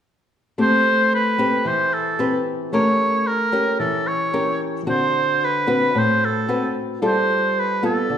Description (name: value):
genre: bossa nova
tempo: 112 BPM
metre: 4/4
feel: straight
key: A minor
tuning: A4 = 440 Hz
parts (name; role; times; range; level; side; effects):
- warm oboe; melody; 0.6-8.2 s; A4 to C#5; -20 LUFS; right 1 dB; none
- nylon-string guitar; accompaniment; 0.6-8.2 s; A2 to B4; -21 LUFS; left 1 dB; none
room: wet recital hall reverb, RT60 1.4 s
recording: recorded in a church or concert hall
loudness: -17 LUFS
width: side -9 dB against mid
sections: 0.6-8.2 A section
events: none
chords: 0.6 Am9; 2.7 A7b9; 4.9 D6; 6.5 Am69/C; 7.0 G9